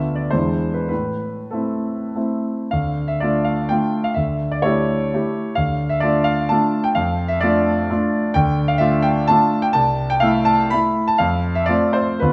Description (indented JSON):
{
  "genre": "classical, romantic triple-time dance for piano with dotted rhythms",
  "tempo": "92-139 BPM",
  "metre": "3/4",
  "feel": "rubato",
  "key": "D minor",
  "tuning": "A4 = 440 Hz",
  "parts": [
    { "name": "clear concert grand piano", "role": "solo", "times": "0.0-12.3 s", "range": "C2 to B5", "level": "-19 LUFS", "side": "equal", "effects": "none" }
  ],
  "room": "moderate concert hall reverb, RT60 1.7 s",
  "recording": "none",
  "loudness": "-19 LUFS",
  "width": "mono",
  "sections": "0.0-2.7 A section; 2.7-12.3 B section",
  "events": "none",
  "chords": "0.3 E7; 0.9 Am; 2.7 Dm; 4.2 A7/D; 5.6 Dm; 7.0 Dm/F; 8.3 Dm; 9.7 Am/C; 11.2 F"
}